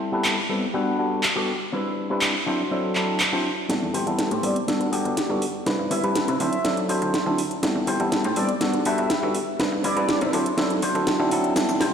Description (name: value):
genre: filtered disco house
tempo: 122 BPM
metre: 4/4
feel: straight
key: unclear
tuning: A4 = 443 Hz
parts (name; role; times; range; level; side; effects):
- bell-like tine electric piano; accompaniment; 0.0-11.9 s; F#3 to B4; -24 LUFS; equal; phaser, low-pass filter
- electric guitar with an envelope filter; riff; 0.1-11.9 s; C4 to D5; -30 LUFS; left 3 dB; low-pass filter
- house drum kit; drums; 0.2-11.9 s; handclaps, hi-hat, shaker, snare drum; -25 LUFS; right 1 dB; none
- slap-like FM bass; bass; 3.7-11.9 s; G1 to C3; -32 LUFS; right 1 dB; high-pass filter, low-pass filter
- analog synth brass; melody; 4.4-10.3 s; D5 to E5; -31 LUFS; equal; chorus, low-pass filter, dub echo
- riser; sound effects; 11.7-11.9 s; none; -35 LUFS; equal; none
room: wet lush hall reverb, RT60 2.2 s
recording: played on a big sound system in a bare room, large studio reverb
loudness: -21 LUFS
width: side -7 dB against mid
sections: 0.0-3.7 A section; 3.7-11.9 B section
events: build-up 3.7-11.9; drum fill 3.7-11.9; filter sweep 3.7-11.9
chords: 0.0 Am7; 0.7 Gmaj7; 1.7 Cmaj7; 2.5 D7; 3.7 Am7; 4.7 Gmaj7; 5.7 Cmaj7; 6.4 D7; 7.6 Am7; 8.6 Gmaj7; 9.6 Cmaj7; 10.3 D7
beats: 0.25 0.74 1.24 | 1.73 2.22 2.71 3.20 | 3.69 4.19 4.68 5.17 | 5.66 6.15 6.65 7.14 | 7.63 8.12 8.61 9.11 | 9.60 10.09 10.58 11.07 | 11.56